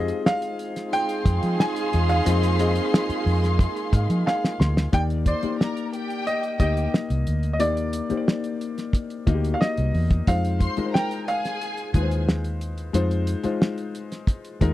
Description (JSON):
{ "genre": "lush 1970s-style soul", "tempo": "90 BPM", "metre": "4/4", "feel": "straight", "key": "F dorian", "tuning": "A4 = 443 Hz", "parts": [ { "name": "clear baby grand piano", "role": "melody", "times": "0.0-14.7 s", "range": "D5 to Ab5", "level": "-28 LUFS", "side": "right 1 dB", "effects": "none" }, { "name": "warm concert grand piano", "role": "accompaniment", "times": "0.0-14.7 s", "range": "Ab3 to C6", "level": "-29 LUFS", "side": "left 5 dB", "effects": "none" }, { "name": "mellow tonewheel organ", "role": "sustained chords", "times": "0.0-4.9 s", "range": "Ab3 to F4", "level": "-33 LUFS", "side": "left 1 dB", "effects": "fast rotary speaker, overdrive" }, { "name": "vintage muted fingered electric bass", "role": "bass", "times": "0.0-14.7 s", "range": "C2 to F3", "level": "-23 LUFS", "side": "equal", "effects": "none" }, { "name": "cloth-damped thuddy drum kit", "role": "drums", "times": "0.1-14.7 s", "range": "hi-hat, kick drum, snare drum", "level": "-22 LUFS", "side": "equal", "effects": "none" }, { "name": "warm studio string section", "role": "second line", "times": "0.9-12.2 s", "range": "G4 to C6", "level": "-31 LUFS", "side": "left 2 dB", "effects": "none" }, { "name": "warm horn section", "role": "stabs", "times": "0.9-4.6 s", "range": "Eb4 to Ab4", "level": "-29 LUFS", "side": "right 10 dB", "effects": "none" } ], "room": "little or no reverb", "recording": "dry, close 1970s-style studio recording", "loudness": "-21 LUFS", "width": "side -14 dB against mid", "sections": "0.0-4.9 A section; 4.9-14.7 B section", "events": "grand piano fill 3.6-4.9; drum fill 4.3-4.9", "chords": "0.0 Fm7; 4.9 Ebmaj7; 10.3 Fm7" }